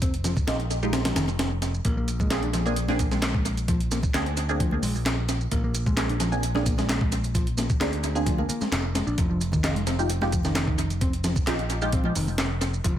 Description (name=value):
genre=breakbeat, breaks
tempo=131 BPM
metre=4/4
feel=straight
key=unclear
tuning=A4 = 440 Hz
part: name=picked electric bass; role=riff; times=0.0-13.0 s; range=Eb3 to D4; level=-30 LUFS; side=equal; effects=overdrive, tape echo
part: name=modern bright picked electric bass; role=bass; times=0.0-13.0 s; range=F1 to D2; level=-28 LUFS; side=equal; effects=none
part: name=breakbeat sampler-style drum kit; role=drums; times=0.0-13.0 s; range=hi-hat, kick drum, snare drum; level=-27 LUFS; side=equal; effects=tape echo
part: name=electronic shaker and handclaps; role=drums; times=0.0-12.9 s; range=none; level=-35 LUFS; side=right 1 dB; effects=tape echo
part: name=congas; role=percussion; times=0.4-12.4 s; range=none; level=-38 LUFS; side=right 1 dB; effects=none
part: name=filtered dub chord stab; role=stabs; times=0.5-12.0 s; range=Ab3 to Ab4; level=-30 LUFS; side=right 2 dB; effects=phaser, lush chorus, tape echo
room=light reverb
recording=echo-heavy mix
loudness=-23 LUFS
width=side -11 dB against mid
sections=0.0-13.0 A section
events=none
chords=0.0 Fm9; 1.9 Bb9; 9.2 Fm9